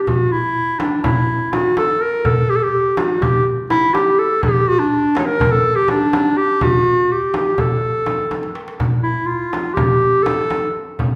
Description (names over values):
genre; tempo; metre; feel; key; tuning
Turkish makam ensemble; 247 BPM (eighths); 9/8; straight; A makam hicaz; A4 = 440 Hz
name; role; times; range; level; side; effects
clear clarinet; melody; 0.0-10.8 s; D4 to C#5; -18 LUFS; equal; none
darbuka; percussion; 0.1-11.1 s; none; -24 LUFS; equal; none
frame drum; percussion; 0.1-11.1 s; none; -26 LUFS; equal; none
room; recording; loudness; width
wet recital hall reverb, RT60 1.4 s; recorded in a church or concert hall; -17 LUFS; mono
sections
0.0-8.8 A section; 8.8-11.2 B section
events
drum fill 8.3-8.8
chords
none